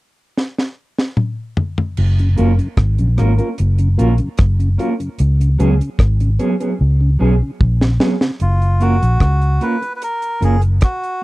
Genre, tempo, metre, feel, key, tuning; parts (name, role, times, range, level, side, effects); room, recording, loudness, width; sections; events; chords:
roots reggae; 75 BPM; 4/4; straight; F# major; A4 = 440 Hz
deep reggae drum kit; drums; 0.4-11.2 s; crash cymbal, hi-hat, kick drum, rim click, snare drum, toms; -16 LUFS; equal
vintage muted fingered electric bass; bass; 2.0-10.8 s; F#1 to C#2; -13 LUFS; equal
mellow tonewheel organ; accompaniment; 2.2-8.3 s; F#2 to E#4; -23 LUFS; left 1 dB; stopped rotary speaker
mellow electric guitar; accompaniment; 2.4-10.6 s; F#3 to A#4; -20 LUFS; right 2 dB; tremolo
melodica; melody; 8.4-11.2 s; E#4 to B4; -21 LUFS; equal
little or no reverb; dry, close 1970s-style studio recording; -14 LUFS; side -19 dB against mid
0.0-2.0 A section; 2.0-8.4 B section; 8.4-11.2 C section
drum fill 0.4-2.0, 6.8-8.4
0.0 N.C.; 2.0 F#maj7; 5.2 C#7sus4; 8.4 F#maj7